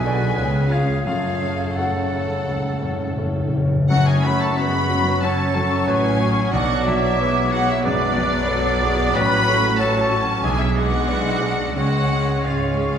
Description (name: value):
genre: classical, romantic movement for piano and orchestra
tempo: 83-96 BPM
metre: 4/4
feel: rubato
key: F# minor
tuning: A4 = 441 Hz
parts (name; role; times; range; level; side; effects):
- rich symphonic violin section; melody; 0.0-13.0 s; E#4 to B5; -28 LUFS; left 4 dB; none
- warm grand piano; melody; 0.0-13.0 s; A1 to G#5; -24 LUFS; left 1 dB; none
- clear clarinet; second line; 0.0-13.0 s; A3 to D5; -30 LUFS; right 1 dB; none
- clear oboe; second line; 0.0-13.0 s; D4 to B4; -28 LUFS; right 1 dB; none
- large flute ensemble; second line; 0.0-13.0 s; E#5 to D6; -28 LUFS; right 1 dB; none
- warm symphonic violin section; second line; 0.0-13.0 s; D5 to B5; -30 LUFS; left 2 dB; none
- rich symphonic viola section; accompaniment; 0.0-13.0 s; E3 to A4; -29 LUFS; right 1 dB; none
- warm bassoon; accompaniment; 0.0-13.0 s; C#3 to G#3; -29 LUFS; equal; none
- dark French horn section; sustained chords; 0.0-13.0 s; F#3 to F#4; -30 LUFS; left 1 dB; none
- warm symphonic cello section; bass; 0.0-13.0 s; F#2 to C#3; -27 LUFS; right 2 dB; none
- warm symphonic double bass section; bass; 0.0-13.0 s; F#1 to C#2; -27 LUFS; right 2 dB; none
- timpani; percussion; 1.1-4.9 s; F#2; -23 LUFS; left 2 dB; none
room: wet recital hall reverb, RT60 1.4 s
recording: heard from further back in the room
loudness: -17 LUFS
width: side -8 dB against mid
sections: 0.0-3.9 A section; 3.9-13.0 B section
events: timpani fill 1.1-3.9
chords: 0.4 C#7; 1.1 F#m; 6.5 Bm; 9.1 F#m/A; 10.4 G#m7b5/B; 11.8 C#